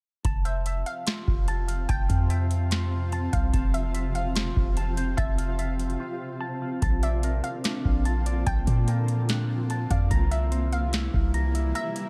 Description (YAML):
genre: hip hop, atmospheric cloud-rap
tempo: 146 BPM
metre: 4/4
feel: half-time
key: F major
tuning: A4 = 440 Hz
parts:
  - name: shimmering ambient pad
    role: sustained chords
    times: 0.8-12.1 s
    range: C3 to F4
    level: -36 LUFS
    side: equal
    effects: chorus, built-in reverb, sidechain pumping
  - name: electric guitar with an envelope filter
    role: arpeggios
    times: 0.2-12.1 s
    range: D4 to Bb5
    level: -39 LUFS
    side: equal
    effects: low-pass filter, digital delay
  - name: warm 808-style bass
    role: bass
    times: 0.2-11.7 s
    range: F1 to Bb2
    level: -28 LUFS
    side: equal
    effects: none
  - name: booming analog drum machine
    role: drums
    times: 0.2-12.1 s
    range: hi-hat, kick drum, snare drum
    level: -29 LUFS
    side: equal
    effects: none
  - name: glassy wavetable pluck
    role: melody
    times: 0.5-12.1 s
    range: E5 to G5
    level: -39 LUFS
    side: equal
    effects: chorus, low-pass filter, digital delay
room: digital ambience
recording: none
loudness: -26 LUFS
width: mono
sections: 0.2-12.1 A section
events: break 6.0-6.8, 11.8-12.1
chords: 0.2 Fmaj7; 6.8 Bbmaj7; 10.1 C7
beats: | 0.25 0.66 1.07 1.48 | 1.89 2.30 2.71 3.12 | 3.53 3.94 4.36 4.77 | 5.18 5.59 6.00 6.41 | 6.82 7.23 7.64 8.05 | 8.46 8.88 9.29 9.70 | 10.11 10.52 10.93 11.34 | 11.75